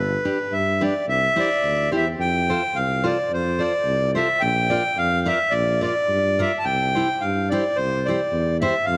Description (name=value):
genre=alpine folk, alpine dance band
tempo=108 BPM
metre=2/4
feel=swing 54% on 8ths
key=F major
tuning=A4 = 440 Hz
part: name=accordion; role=melody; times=0.0-9.0 s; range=B4 to A5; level=-23 LUFS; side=equal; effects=none
part: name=warm tuba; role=bass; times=0.0-9.0 s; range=G1 to G2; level=-28 LUFS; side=equal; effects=none
part: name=picked steel-string acoustic guitar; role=accompaniment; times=0.3-8.7 s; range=D4 to D5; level=-30 LUFS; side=equal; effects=none
room=moderate concert hall reverb, RT60 2.5 s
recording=none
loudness=-21 LUFS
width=mono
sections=0.0-2.2 A section; 2.2-9.0 B section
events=none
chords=0.0 G; 1.1 C; 2.2 F; 4.4 Bb; 6.6 C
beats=0.52 | 1.07 1.63 | 2.20 2.76 | 3.31 3.86 | 4.41 4.96 | 5.52 6.08 | 6.65 7.21 | 7.77 8.32 | 8.88